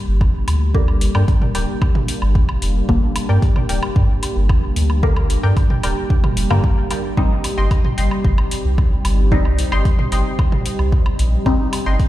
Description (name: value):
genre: dub techno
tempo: 112 BPM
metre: 4/4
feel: straight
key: G minor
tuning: A4 = 440 Hz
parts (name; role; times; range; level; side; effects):
- deep dark ambient pad; sustained chords; 0.0-12.1 s; G3 to G4; -25 LUFS; equal; chorus, built-in reverb, sidechain pumping
- pure sine sub bass; bass; 0.1-12.0 s; D1 to G2; -17 LUFS; equal; sidechain pumping
- electronic kick drum; drums; 0.2-12.1 s; none; -16 LUFS; equal; overdrive
- electronic woodblock and toms; percussion; 0.2-11.8 s; none; -28 LUFS; right 1 dB; sidechain pumping on perc, sidechain pumping on toms, dub echo
- electronic hi-hat; drums; 0.5-12.1 s; none; -30 LUFS; left 2 dB; overdrive
- filtered dub chord stab; stabs; 0.7-11.7 s; D3 to Eb4; -25 LUFS; left 2 dB; phaser, vintage 12-bit sampler grit, sidechain pumping, dub echo
- filtered dub chord stab; riff; 1.1-12.0 s; Bb4 to C6; -29 LUFS; left 2 dB; chorus, sidechain pumping, dub echo
room: digital ambience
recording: played on a big sound system in a bare room, large studio reverb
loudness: -15 LUFS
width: side -15 dB against mid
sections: 0.0-12.1 A section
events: none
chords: 0.0 Gm; 7.2 Cm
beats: 0.21 | 0.75 1.28 1.82 2.35 | 2.89 3.42 3.96 4.50 | 5.03 5.57 6.10 6.64 | 7.17 7.71 8.25 8.78 | 9.32 9.85 10.39 10.93 | 11.46 12.00